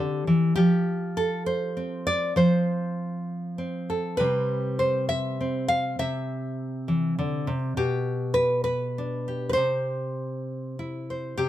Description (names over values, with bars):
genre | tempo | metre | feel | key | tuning
folk, solo fingerstyle acoustic guitar | 67 BPM (dotted quarters) | 6/8 | straight | C major | A4 = 440 Hz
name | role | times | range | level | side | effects
nylon-string guitar | solo | 0.0-11.5 s | B2 to F5 | -24 LUFS | equal | none
room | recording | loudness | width
light reverb | none | -24 LUFS | side -13 dB against mid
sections
0.0-11.4 A section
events
none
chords
0.0 C (rootless); 0.6 Fadd9; 4.2 C; 7.8 G/B; 9.6 C